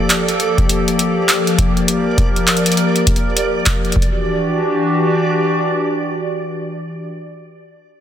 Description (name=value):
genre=IDM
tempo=101 BPM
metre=4/4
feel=swing 62% on 16ths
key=unclear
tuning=A4 = 440 Hz
part: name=hollow soft pad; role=sustained chords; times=0.0-7.1 s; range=E3 to Bb4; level=-17 LUFS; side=left 1 dB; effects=chorus
part: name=backwards swelling texture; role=texture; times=0.0-4.0 s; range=D5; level=-25 LUFS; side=right 3 dB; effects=built-in reverb, sidechain pumping
part: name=booming analog drum machine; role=drums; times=0.1-4.1 s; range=handclaps, hi-hat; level=-17 LUFS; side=equal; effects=dub echo
part: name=electronic kick drum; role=drums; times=0.6-4.1 s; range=none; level=-18 LUFS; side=equal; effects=none
room=moderate lush hall reverb, RT60 2.7 s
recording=dense, heavily limited modern master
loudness=-14 LUFS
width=side -10 dB against mid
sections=0.0-4.0 A section; 4.0-6.3 B section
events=none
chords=0.0 Gm9; 4.0 Em9